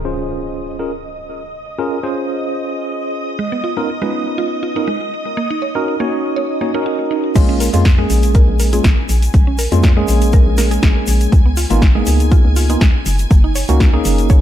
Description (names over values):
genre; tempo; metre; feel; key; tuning
deep house; 121 BPM; 4/4; swing 54% on 16ths; Bb minor; A4 = 440 Hz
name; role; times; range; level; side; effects
tine electric piano; stabs; 0.0-14.4 s; Ab3 to Db5; -20 LUFS; right 1 dB; fast stereo tremolo, sidechain pumping, low-pass filter, tape echo
impact; sound effects; 0.0-1.4 s; none; -31 LUFS; equal; none
soft string machine; texture; 0.1-14.4 s; Eb5 to Ab6; -27 LUFS; right 1 dB; ensemble chorus, sidechain pumping
deep house drum kit; drums; 0.2-14.4 s; crash cymbal, hi-hat, snare drum; -22 LUFS; equal; overdrive, low-pass filter on snare, low-pass filter on hats, low-pass filter on cymbals, low-pass filter on room
mallet-like synth pluck; arpeggios; 3.4-14.4 s; Ab3 to Db5; -24 LUFS; right 3 dB; chorus, cassette tape, sidechain pumping, ping-pong delay
hollow knocking FM bass; bass; 7.4-14.4 s; Gb1 to F2; -16 LUFS; equal; sidechain pumping
electronic kick drum; drums; 7.4-14.4 s; none; -11 LUFS; equal; overdrive
tube shaker; percussion; 7.4-14.4 s; none; -29 LUFS; left 3 dB; none
room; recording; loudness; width
light reverb; dark, warm production; -13 LUFS; side -12 dB against mid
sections
0.0-7.4 A section; 7.4-14.4 B section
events
impact 0.0-1.4; drop 7.4-14.4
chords
0.0 Bbm7 (rootless); 3.4 Db13; 5.1 Gb6; 7.4 Bbm7; 11.3 Db13; 13.1 Gb6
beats
0.41 0.91 | 1.41 1.90 2.40 2.89 | 3.39 3.88 4.38 4.88 | 5.37 5.87 6.36 6.86 | 7.36 7.85 8.35 8.84 | 9.34 9.84 10.33 10.83 | 11.32 11.82 12.31 12.81 | 13.31 13.80 14.30